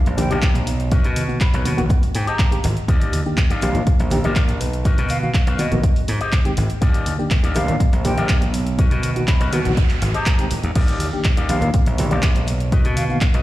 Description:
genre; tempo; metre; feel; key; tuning
filtered disco house; 122 BPM; 4/4; straight; Eb major; A4 = 442 Hz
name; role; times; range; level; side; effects
electric guitar with an envelope filter; riff; 0.1-13.4 s; F#4 to G5; -29 LUFS; left 5 dB; vintage 12-bit sampler grit, sidechain pumping
slap bass; bass; 0.1-13.4 s; Ab1 to B2; -21 LUFS; equal; sidechain pumping
punchy analog drum machine; drums; 0.1-13.4 s; crash cymbal, handclaps, hi-hat; -28 LUFS; equal; sidechain pumping on hats, sidechain pumping on cymbals
maracas and congas; percussion; 0.1-13.3 s; none; -28 LUFS; right 2 dB; none
hollow concert flute; melody; 0.2-13.2 s; D#5 to B5; -30 LUFS; right 1 dB; sidechain pumping, digital delay
reed electric piano; accompaniment; 0.2-13.2 s; Eb3 to G4; -26 LUFS; equal; fast tremolo, phaser, vintage 12-bit sampler grit, sidechain pumping
electronic kick drum; drums; 0.4-13.3 s; none; -17 LUFS; equal; none
noise sweep; sound effects; 9.0-10.8 s; none; -32 LUFS; right 2 dB; none
room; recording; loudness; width
light reverb, digital ambience; played on a big sound system in a bare room, large studio reverb; -16 LUFS; side -16 dB against mid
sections
0.0-13.4 A section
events
clean electric guitar fill 1.9-2.9; noise sweep 9.0-10.8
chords
0.0 Ebmaj7; 0.9 Bmaj7; 1.9 Abmaj7; 2.9 Ebmaj7; 4.9 Bmaj7; 5.8 Abmaj7; 6.8 Ebmaj7; 8.8 Bmaj7; 9.8 Abmaj7; 10.8 Ebmaj7; 12.7 Bmaj7

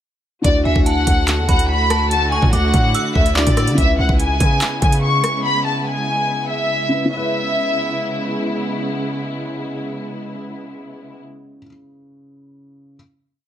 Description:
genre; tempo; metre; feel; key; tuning
hip hop, drill; 144 BPM; 4/4; half-time; C# phrygian; A4 = 440 Hz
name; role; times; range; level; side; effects
rich studio violin section; melody; 0.4-8.3 s; D5 to C#6; -20 LUFS; left 1 dB; low-pass filter, digital delay
felt-muted upright piano; accompaniment; 0.4-13.0 s; C#3 to B4; -26 LUFS; left 2 dB; low-pass filter
muted studio string section; sustained chords; 0.4-11.2 s; C#3 to F#4; -25 LUFS; right 1 dB; none
distorted 808-style bass; bass; 0.4-5.2 s; C#2 to D3; -19 LUFS; equal; distortion
drill drum kit; drums; 0.4-5.3 s; handclaps, hi-hat, kick drum, rim click; -18 LUFS; equal; none
metallic FM bell; second line; 0.7-3.8 s; G#5 to E6; -27 LUFS; right 3 dB; chorus, digital delay
room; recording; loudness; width
light reverb, small room ambience; none; -15 LUFS; side -10 dB against mid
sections
0.4-7.1 hook; 7.1-10.4 final chord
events
none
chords
0.4 Dadd9; 3.8 C#m7

